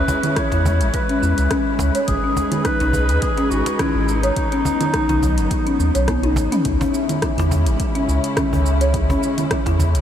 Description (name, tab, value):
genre	organic downtempo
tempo	105 BPM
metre	4/4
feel	swing 55% on 16ths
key	C# minor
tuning	A4 = 440 Hz
part	growling clarinet	melody	0.0-6.1 s	D#4 to C#5	-25 LUFS	equal	diffuse ambient delay
part	muted studio string section	sustained chords	0.0-10.0 s	C#3 to B4	-26 LUFS	left 1 dB	sidechain pumping
part	folk marimba with medium mallets	arpeggios	0.0-10.0 s	B3 to C#5	-22 LUFS	left 1 dB	low-pass filter, diffuse ambient delay
part	warm sub bass	bass	0.0-10.0 s	F#1 to E2	-19 LUFS	equal	tube saturation
part	deep house drum kit	drums	0.1-10.0 s	congas, hi-hat, rim click, shaker, toms	-26 LUFS	right 2 dB	overdrive, studio reverb
part	cajon	percussion	0.1-9.9 s	none	-30 LUFS	right 1 dB	none
part	electronic kick drum	drums	0.4-9.6 s	none	-26 LUFS	equal	overdrive, studio reverb
room	moderate huge ambient reverb, RT60 7.2 s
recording	dreamy mix soaked in reverb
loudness	-16 LUFS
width	side -10 dB against mid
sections	0.0-6.7 A section; 6.7-10.0 A section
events	drum fill 6.1-6.7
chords	0.0 C#m7; 2.1 G#m; 4.4 B; 6.7 C#m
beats	0.37 0.94 1.51 | 2.08 2.65 3.22 3.80 | 4.37 4.94 5.51 6.08 | 6.65 7.22 7.80 8.37 | 8.94 9.51